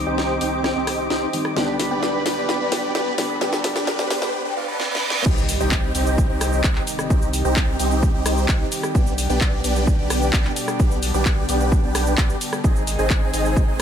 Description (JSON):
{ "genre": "EDM, festival progressive house", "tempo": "130 BPM", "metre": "4/4", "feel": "straight", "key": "C minor", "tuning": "A4 = 440 Hz", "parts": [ { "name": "felt-muted upright piano", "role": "accompaniment", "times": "0.0-5.3 s", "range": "D3 to Eb4", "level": "-30 LUFS", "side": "left 2 dB", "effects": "sidechain pumping, dub echo" }, { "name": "lush unison pad", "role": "sustained chords", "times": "0.0-13.8 s", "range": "B2 to D6", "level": "-28 LUFS", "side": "equal", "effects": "chorus, sidechain pumping" }, { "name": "saturated sub bass", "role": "bass", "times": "0.0-13.8 s", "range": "Ab1 to C2", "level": "-25 LUFS", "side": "equal", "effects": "sidechain pumping" }, { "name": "riser, reverse cymbal and impact", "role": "sound effects", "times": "0.5-7.1 s", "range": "none", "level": "-30 LUFS", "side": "right 1 dB", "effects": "none" }, { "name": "big supersaw lead", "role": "riff", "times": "0.1-13.8 s", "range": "B3 to B4", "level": "-24 LUFS", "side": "equal", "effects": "phaser, sidechain pumping, low-pass filter, dub echo" }, { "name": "house drum kit", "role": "drums", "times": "0.2-13.8 s", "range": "cabasa, crash cymbal, handclaps, hi-hat, rim click, snare drum", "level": "-26 LUFS", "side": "equal", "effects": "none" }, { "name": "electronic kick drum", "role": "drums", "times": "5.3-13.7 s", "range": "none", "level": "-19 LUFS", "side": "equal", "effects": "none" } ], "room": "light reverb", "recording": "high-pass filter", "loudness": "-18 LUFS", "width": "side -8 dB against mid", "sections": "0.0-5.3 A section; 5.3-13.8 B section", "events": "build-up 0.0-5.3; drum fill 0.0-4.3, 4.8-5.3; filter sweep on supersaw synth 0.0-5.3; filter sweep 0.0-5.3; reverse cymbal 4.3-5.3; drop 5.3-13.8; impact 5.3-7.1", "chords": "0.0 Cm; 1.6 G/B; 5.3 Cm; 8.9 G/B; 12.6 Ab" }